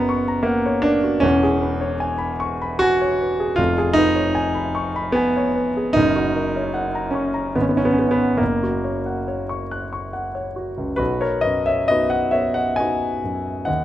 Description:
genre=classical, romantic nocturne for solo piano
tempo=66-81 BPM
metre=3/4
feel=rubato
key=B major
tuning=A4 = 440 Hz
part: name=warm grand piano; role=solo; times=0.0-13.8 s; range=E1 to F#6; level=-18 LUFS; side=equal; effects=none
room=moderate recital hall reverb, RT60 1.5 s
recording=close, detailed microphones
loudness=-18 LUFS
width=side -13 dB against mid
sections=0.0-11.0 A section; 11.0-13.8 B section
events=none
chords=0.0 F#; 1.2 C#m7/E; 3.6 C#7/E#; 6.0 F#; 7.6 G#m7; 8.4 F#; 11.0 B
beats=0.47 | 1.23 2.00 2.82 | 3.59 4.36 5.16 | 5.96 6.75 7.55 | 8.41 9.28 10.12 | 11.00 11.90 12.78 | 13.68

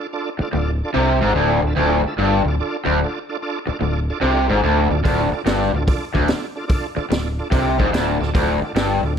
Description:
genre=blues rock power trio and southern rock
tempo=146 BPM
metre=4/4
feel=swing 66% on 8ths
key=D minor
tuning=A4 = 440 Hz
part: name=bright tonewheel organ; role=sustained chords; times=0.0-9.1 s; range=D4 to A5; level=-27 LUFS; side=right 4 dB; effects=slow rotary speaker, overdrive, chorus vibrato
part: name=raw garage guitar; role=riff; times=0.4-9.2 s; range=D2 to C3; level=-19 LUFS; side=left 1 dB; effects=overdrive
part: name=overdriven fingered electric bass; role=bass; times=0.4-9.2 s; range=D1 to C2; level=-22 LUFS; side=equal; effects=none
part: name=vintage drum kit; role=drums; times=5.1-8.9 s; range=hi-hat, kick drum, snare drum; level=-21 LUFS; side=equal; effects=none
room=light reverb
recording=none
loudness=-17 LUFS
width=side -7 dB against mid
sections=0.0-9.2 A section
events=tonewheel organ fill 7.5-8.4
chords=0.0 Dm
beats=| 0.11 0.53 0.94 1.35 | 1.76 2.18 2.59 3.00 | 3.41 3.82 4.24 4.65 | 5.06 5.47 5.88 6.29 | 6.71 7.12 7.53 7.94 | 8.36 8.77

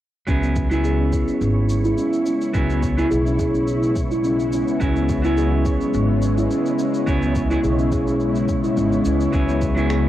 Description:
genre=organic downtempo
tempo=106 BPM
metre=4/4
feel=swing 54% on 16ths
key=C# minor pentatonic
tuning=A4 = 440 Hz
part: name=clean electric guitar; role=accompaniment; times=0.3-10.1 s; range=F#3 to G#4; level=-28 LUFS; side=right 3 dB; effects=sidechain pumping, cassette tape, tape echo
part: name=bowed-like drone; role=sustained chords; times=1.4-10.1 s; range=C#3 to F#4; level=-24 LUFS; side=left 2 dB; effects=built-in reverb, sidechain pumping, cassette tape
part: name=kalimba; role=arpeggios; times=0.3-10.1 s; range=B3 to G#4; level=-22 LUFS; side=equal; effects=low-pass filter, cassette tape, tape echo
part: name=upright bass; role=bass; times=0.3-10.1 s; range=G#1 to C#2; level=-22 LUFS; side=equal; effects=sidechain pumping
part: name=electronic cabasa and finger snaps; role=drums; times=0.3-10.0 s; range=none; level=-41 LUFS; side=left 1 dB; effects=small room ambience, cassette tape
part: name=electronic kick drum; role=drums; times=0.3-9.7 s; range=none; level=-24 LUFS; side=equal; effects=small room ambience, cassette tape
part: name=wind-like tuned noise texture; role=texture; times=0.8-10.1 s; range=C#5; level=-34 LUFS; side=equal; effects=built-in reverb, cassette tape
room=light reverb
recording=home recording on cassette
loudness=-17 LUFS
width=side -13 dB against mid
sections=0.3-10.1 A section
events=filter sweep on kalimba 0.3-10.1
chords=0.3 C#m7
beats=| 0.28 0.85 1.41 1.98 | 2.54 3.11 3.68 4.24 | 4.81 5.38 5.94 6.51 | 7.07 7.64 8.21 8.77 | 9.34 9.90

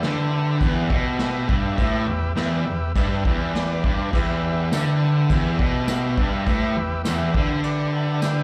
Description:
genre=garage rock duo or trio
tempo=102 BPM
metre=4/4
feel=straight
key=E minor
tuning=A4 = 441 Hz
part: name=overdriven combo organ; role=sustained chords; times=0.0-8.4 s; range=G4 to A5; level=-32 LUFS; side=equal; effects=none
part: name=fuzz guitar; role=riff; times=0.0-8.4 s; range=E2 to D3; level=-24 LUFS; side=equal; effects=distortion, slapback echo
part: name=vintage brush drum kit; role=drums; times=0.0-8.4 s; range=crash cymbal, kick drum, snare drum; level=-27 LUFS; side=equal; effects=none
part: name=tambourine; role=percussion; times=4.7-8.4 s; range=none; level=-41 LUFS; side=equal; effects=none
room=small room reverb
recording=live gig heard through the venue's PA, club reverb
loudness=-22 LUFS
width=mono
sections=0.0-8.4 A section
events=transistor combo organ fill 7.6-8.4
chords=0.0 Em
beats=0.03 0.62 1.20 | 1.79 2.38 2.96 3.55 | 4.13 4.72 5.31 5.89 | 6.48 7.06 7.65 8.23

